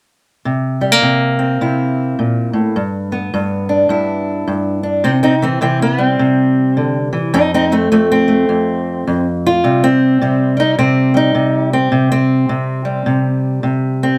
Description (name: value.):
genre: acoustic country blues, solo or duo.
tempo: 105 BPM.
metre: 4/4.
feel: swing 61% on 8ths.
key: C mixolydian.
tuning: A4 = 439 Hz.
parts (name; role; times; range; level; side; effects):
fingerpicked old ladder-braced acoustic guitar; solo; 0.5-14.2 s; F2 to F4; -15 LUFS; equal; none.
room: light reverb.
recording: none.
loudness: -15 LUFS.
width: mono.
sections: 0.5-5.0 A section; 5.0-14.2 B section.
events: none.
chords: 0.5 C7; 2.8 G; 5.0 C; 7.3 F; 9.6 C5.